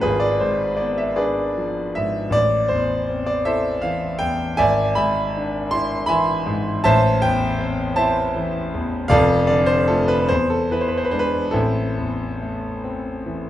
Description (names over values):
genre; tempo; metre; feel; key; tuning
classical, romantic character piece for solo piano; 46-55 BPM (dotted quarters); 6/8; rubato; A minor; A4 = 440 Hz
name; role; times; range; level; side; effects
clear concert grand piano; solo; 0.0-13.5 s; F1 to C6; -18 LUFS; equal; none
room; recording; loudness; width
moderate recital hall reverb, RT60 1.8 s; none; -18 LUFS; side -12 dB against mid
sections
0.0-13.5 A section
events
none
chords
0.0 G#dim7; 2.3 Am; 4.6 E7/G#; 6.8 Am; 9.1 Dm/F; 10.3 E7; 11.6 Am